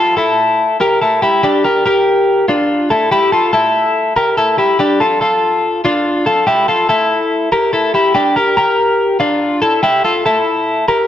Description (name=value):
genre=indie pop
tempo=143 BPM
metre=4/4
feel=straight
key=unclear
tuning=A4 = 440 Hz
part: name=twelve-string electric guitar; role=solo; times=0.0-11.1 s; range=D4 to Bb4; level=-11 LUFS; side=left 1 dB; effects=none
room=moderate spring reverb, RT60 1.3 s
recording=dark, warm production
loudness=-11 LUFS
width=side -11 dB against mid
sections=0.0-11.1 A section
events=none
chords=0.0 A5; 1.4 Gm7; 2.9 A5; 4.8 Dm; 6.5 A5; 8.2 Gm7; 9.6 A7(no3)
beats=0.17 0.59 1.01 | 1.43 1.85 2.27 2.69 | 3.12 3.54 3.96 4.38 | 4.80 5.22 5.64 6.06 | 6.48 6.90 7.32 7.74 | 8.15 8.57 8.99 9.41 | 9.83 10.25 10.67